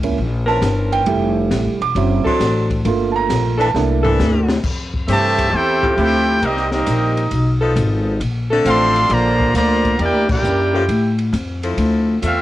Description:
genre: jazz, big band swing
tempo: 135 BPM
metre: 4/4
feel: swing 68% on 8ths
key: F major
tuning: A4 = 443 Hz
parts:
  - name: warm grand piano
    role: accompaniment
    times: 0.0-4.5 s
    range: F#3 to D6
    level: -19 LUFS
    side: right 6 dB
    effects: cassette tape
  - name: upright bass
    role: bass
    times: 0.0-12.4 s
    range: E1 to A2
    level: -18 LUFS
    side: left 1 dB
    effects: none
  - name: open jazz drum kit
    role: drums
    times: 0.0-12.4 s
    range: crash cymbal, hi-hat, kick drum, ride cymbal, snare drum, toms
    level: -26 LUFS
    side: left 1 dB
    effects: cassette tape
  - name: bright saxophone section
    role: sustained chords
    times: 0.5-12.2 s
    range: D3 to Bb4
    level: -20 LUFS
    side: left 2 dB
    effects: cassette tape
  - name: brilliant trumpet section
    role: melody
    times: 5.1-12.4 s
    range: C4 to C6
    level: -18 LUFS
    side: left 1 dB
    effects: cassette tape
  - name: brilliant trombone section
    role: second line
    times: 5.1-12.4 s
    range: C3 to G4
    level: -21 LUFS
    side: right 4 dB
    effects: cassette tape
room: light reverb, small room ambience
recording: home recording on cassette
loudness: -14 LUFS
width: side -14 dB against mid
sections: 0.0-4.6 A section; 4.6-12.4 B section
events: grand piano solo 0.0-4.6; drum fill 3.7-4.6; band accent 10.2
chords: 0.0 C7b9; 1.1 Fmaj9; 2.0 D7; 2.9 Gm7; 3.7 C13; 4.6 Fmaj9; 6.4 Cm7; 7.3 B7#11; 8.2 Bbmaj9; 10.0 Em7b5; 10.9 A5; 11.8 Dm9

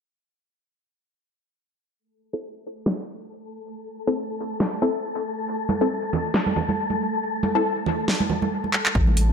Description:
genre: deep dubstep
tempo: 138 BPM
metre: 4/4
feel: swing 57% on 16ths, half-time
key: A minor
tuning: A4 = 440 Hz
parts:
  - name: wind-like tuned noise texture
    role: texture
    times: 3.5-9.3 s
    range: A3 to A4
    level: -28 LUFS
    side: left 1 dB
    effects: built-in reverb
  - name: filtered dub chord stab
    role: stabs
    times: 2.3-9.3 s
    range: C4 to A4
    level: -26 LUFS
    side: left 2 dB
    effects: chorus, dub echo
  - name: dubstep drum kit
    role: drums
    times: 2.9-9.3 s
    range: handclaps, hi-hat, snare drum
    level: -24 LUFS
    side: equal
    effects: studio reverb
  - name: congas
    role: percussion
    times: 5.7-9.1 s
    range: none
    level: -26 LUFS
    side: right 4 dB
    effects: dub echo
  - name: soft dub sub bass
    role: bass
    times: 9.0-9.3 s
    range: A1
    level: -19 LUFS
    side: equal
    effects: none
  - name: electronic kick drum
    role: drums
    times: 9.0-9.1 s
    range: none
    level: -22 LUFS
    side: equal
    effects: overdrive, studio reverb
room: moderate digital room reverb, RT60 1.1 s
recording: low-pass filter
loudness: -22 LUFS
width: side -6 dB against mid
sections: 2.0-8.9 A section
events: filter sweep on synth stab 2.0-8.9; filter sweep 2.0-8.9; drum fill 8.7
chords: none

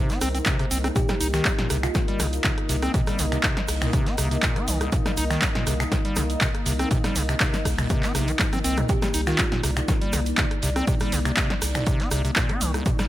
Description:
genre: acid house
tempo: 121 BPM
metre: 4/4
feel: swing 53% on 16ths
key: C minor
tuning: A4 = 443 Hz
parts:
  - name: dark analog pad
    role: sustained chords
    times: 0.0-13.1 s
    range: Bb3 to G5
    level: -31 LUFS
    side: left 1 dB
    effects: chorus, sidechain pumping
  - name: acid bass, square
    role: riff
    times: 0.0-13.1 s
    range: C2 to Eb4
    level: -28 LUFS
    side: equal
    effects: tube saturation, sidechain pumping, ping-pong delay
  - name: damped 70s drum kit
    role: drums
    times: 0.1-13.0 s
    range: hi-hat, snare drum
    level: -39 LUFS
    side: right 3 dB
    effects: none
  - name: punchy analog drum machine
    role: drums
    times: 0.1-13.1 s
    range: finger snaps, handclaps, hi-hat, rim click, snare drum, toms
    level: -27 LUFS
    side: equal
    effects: none
  - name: tube shaker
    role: percussion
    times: 0.1-13.1 s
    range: none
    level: -36 LUFS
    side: right 3 dB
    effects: none
  - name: saturated sub bass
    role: bass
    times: 0.2-12.8 s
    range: Bb1 to C2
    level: -27 LUFS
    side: equal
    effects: sidechain pumping
  - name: electronic kick drum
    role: drums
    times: 0.5-13.0 s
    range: none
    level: -25 LUFS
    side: equal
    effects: none
  - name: thumb-piano-like synth pluck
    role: melody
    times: 1.0-2.0, 8.9-10.0 s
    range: F4 to G4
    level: -32 LUFS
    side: equal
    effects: chorus, ping-pong delay
room: little or no reverb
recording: none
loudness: -21 LUFS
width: side -14 dB against mid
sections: 0.0-13.1 A section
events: drum fill 8.1-8.9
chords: 0.0 Cm7

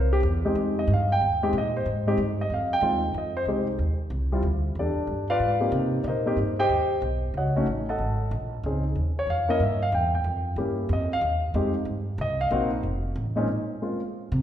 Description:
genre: jazz piano trio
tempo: 186 BPM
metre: 4/4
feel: swing 64% on 8ths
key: F minor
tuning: A4 = 442 Hz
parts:
  - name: warm concert grand piano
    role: melody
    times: 0.0-14.0 s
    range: Bb2 to A5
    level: -25 LUFS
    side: equal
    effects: none
  - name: upright bass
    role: bass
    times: 0.0-14.4 s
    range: F1 to C3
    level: -27 LUFS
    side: equal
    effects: none
room: wet recital hall reverb, RT60 1.8 s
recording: recorded in a church or concert hall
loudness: -23 LUFS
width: side -10 dB against mid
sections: 0.0-3.1 A section; 3.1-13.5 A section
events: grand piano solo 0.0-13.5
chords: 0.0 C; 0.6 Fm9; 3.1 F7sus2; 4.4 Dsus24; 5.1 G7b9; 5.7 Cm7; 7.0 B9; 8.3 Bbmadd11; 9.6 Edim7; 10.9 F7sus2; 12.2 Cm7b5; 12.8 F; 13.5 N.C.

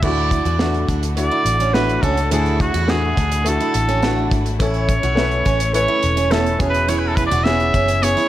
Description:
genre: piano-driven pop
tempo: 105 BPM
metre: 4/4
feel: straight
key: unclear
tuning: A4 = 440 Hz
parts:
  - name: clear trumpet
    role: melody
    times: 0.0-8.3 s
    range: F#4 to E5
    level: -21 LUFS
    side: equal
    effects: none
  - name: warm concert grand piano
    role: accompaniment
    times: 0.0-8.3 s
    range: A2 to B4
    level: -23 LUFS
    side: left 2 dB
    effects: none
  - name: bright studio string section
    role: sustained chords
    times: 0.0-8.3 s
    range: D3 to G#4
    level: -31 LUFS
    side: left 1 dB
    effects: none
  - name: picked steel-string acoustic guitar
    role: riff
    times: 0.0-8.3 s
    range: B3 to F#4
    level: -25 LUFS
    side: right 7 dB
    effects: none
  - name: vintage muted fingered electric bass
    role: bass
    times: 0.0-8.1 s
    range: E1 to E2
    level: -21 LUFS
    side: equal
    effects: none
  - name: modern studio drum kit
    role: drums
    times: 0.0-8.3 s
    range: crash cymbal, hi-hat, kick drum, snare drum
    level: -23 LUFS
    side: equal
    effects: none
room: light reverb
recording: none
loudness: -15 LUFS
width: side -13 dB against mid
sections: 0.0-8.3 A section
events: none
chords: 0.0 Dadd9; 4.6 A; 6.6 E6

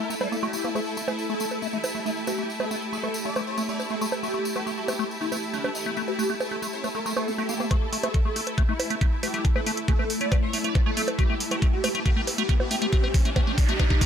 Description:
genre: psychedelic trance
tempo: 138 BPM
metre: 4/4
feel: straight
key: unclear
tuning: A4 = 440 Hz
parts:
  - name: swarming rave lead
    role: melody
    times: 0.0-14.1 s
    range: D4 to D5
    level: -32 LUFS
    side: equal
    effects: chorus, phaser, cassette tape, sidechain pumping, dub echo
  - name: swarming drone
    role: sustained chords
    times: 0.0-14.1 s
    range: A3 to G4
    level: -34 LUFS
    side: equal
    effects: built-in reverb, sidechain pumping
  - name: liquid acid bass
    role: riff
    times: 0.0-14.1 s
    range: G3 to C#4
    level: -31 LUFS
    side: moving between left 3 dB and right 3 dB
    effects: phaser, auto-pan, vintage 12-bit sampler grit, sidechain pumping, tape echo
  - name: bright studio string section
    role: texture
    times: 0.0-14.1 s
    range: A3 to A5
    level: -34 LUFS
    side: left 1 dB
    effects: sidechain pumping
  - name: tambourine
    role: percussion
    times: 0.1-7.7 s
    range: none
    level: -37 LUFS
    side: equal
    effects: none
  - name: electronic bongos and hi-hat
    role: drums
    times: 0.2-14.1 s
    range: none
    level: -31 LUFS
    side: right 3 dB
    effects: overdrive
  - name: swell, riser and noise sweep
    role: sound effects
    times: 7.0-14.1 s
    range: none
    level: -35 LUFS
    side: right 2 dB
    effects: none
  - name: electronic kick drum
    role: drums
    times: 7.7-14.1 s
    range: none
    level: -22 LUFS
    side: equal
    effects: none
room: light reverb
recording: none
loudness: -23 LUFS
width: side -8 dB against mid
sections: 0.0-7.7 A section; 7.7-14.1 B section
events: filter sweep on acid bass 0.0-7.7, 7.7-14.1; swell 7.0-7.7; build-up 7.7-14.1; riser 10.6-14.1; drum fill 11.2-14.1; noise sweep 12.9-14.1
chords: 0.0 A5

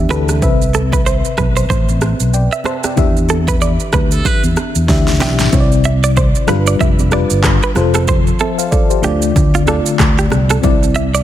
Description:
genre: afrobeats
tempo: 94 BPM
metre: 4/4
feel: swing 58% on 16ths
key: C major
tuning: A4 = 438 Hz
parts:
  - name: FM electric piano with auto-pan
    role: accompaniment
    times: 0.0-11.2 s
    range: C3 to A5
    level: -18 LUFS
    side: left 4 dB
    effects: none
  - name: fingered electric bass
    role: bass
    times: 0.0-11.2 s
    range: F1 to E2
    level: -15 LUFS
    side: equal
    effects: none
  - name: direct-recorded clean electric guitar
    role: riff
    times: 0.1-11.2 s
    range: F4 to E5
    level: -21 LUFS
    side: right 6 dB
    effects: tape echo
  - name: deep house drum kit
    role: drums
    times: 0.1-11.2 s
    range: handclaps, kick drum, rim click, shaker, snare drum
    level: -16 LUFS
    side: equal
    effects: overdrive
  - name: congas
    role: percussion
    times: 0.1-11.1 s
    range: none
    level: -26 LUFS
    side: right 10 dB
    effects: none
room: little or no reverb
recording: dense, heavily limited modern master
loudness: -11 LUFS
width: side -12 dB against mid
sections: 0.0-5.5 A section; 5.5-11.2 B section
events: drum fill 4.9-5.5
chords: 0.4 Cmaj7; 3.0 Em7; 5.5 Cadd9; 6.5 G7; 7.8 F; 9.0 Dm; 10.6 Cadd9

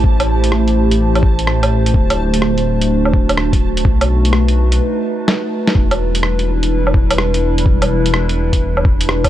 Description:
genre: future garage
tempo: 126 BPM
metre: 4/4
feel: swing 66% on 16ths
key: E minor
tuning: A4 = 438 Hz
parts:
  - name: warbly tape-like pad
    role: sustained chords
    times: 0.0-9.3 s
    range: G3 to C5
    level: -18 LUFS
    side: right 1 dB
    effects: chorus, built-in reverb, phaser, sidechain pumping
  - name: dark detuned saw bass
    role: bass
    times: 0.0-9.3 s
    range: D1 to B1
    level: -16 LUFS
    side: equal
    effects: sidechain pumping
  - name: electronic kick drum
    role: drums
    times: 0.0-9.3 s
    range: none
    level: -14 LUFS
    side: equal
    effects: none
  - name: backwards swelling texture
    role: texture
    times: 0.0-4.8 s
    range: A5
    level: -29 LUFS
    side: right 4 dB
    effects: built-in reverb
  - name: lo-fi sampler-style drum kit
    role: drums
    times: 0.2-9.3 s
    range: hi-hat, rim click, snare drum, woodblock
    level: -18 LUFS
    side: equal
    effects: none
room: light reverb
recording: none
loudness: -12 LUFS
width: side -12 dB against mid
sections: 0.0-5.8 A section; 5.8-9.3 B section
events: break 4.8-5.8; drum fill 5.3-5.8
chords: 0.0 Am7; 1.9 D7; 3.9 B7; 5.8 Em7

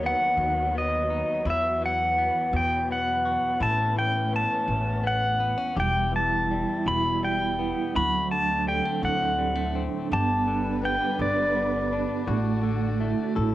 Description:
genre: acoustic folk-pop ballad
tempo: 56 BPM (dotted quarters)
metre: 6/8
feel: straight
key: D major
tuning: A4 = 440 Hz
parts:
  - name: pedal steel guitar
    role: melody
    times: 0.0-13.3 s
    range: D5 to B5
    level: -25 LUFS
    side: equal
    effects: cassette tape
  - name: direct-recorded clean electric guitar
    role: accompaniment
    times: 0.0-13.5 s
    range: D2 to A4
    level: -32 LUFS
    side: left 6 dB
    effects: cassette tape
  - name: warm studio string section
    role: sustained chords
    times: 0.0-13.5 s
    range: D3 to B4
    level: -36 LUFS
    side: equal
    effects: cassette tape
  - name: upright bass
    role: bass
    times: 0.0-13.5 s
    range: E1 to E2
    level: -30 LUFS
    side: equal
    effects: none
  - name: vibraphone with medium mallets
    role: arpeggios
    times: 5.8-13.5 s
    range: F#3 to A4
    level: -29 LUFS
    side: right 6 dB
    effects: cassette tape
room: light reverb, studio reverb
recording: home recording on cassette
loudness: -23 LUFS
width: side -14 dB against mid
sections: 0.0-13.5 A section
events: none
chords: 0.0 B/D#; 1.5 Esus2; 3.6 Aadd9; 5.8 Em; 8.0 D7; 10.1 G; 12.3 D/A

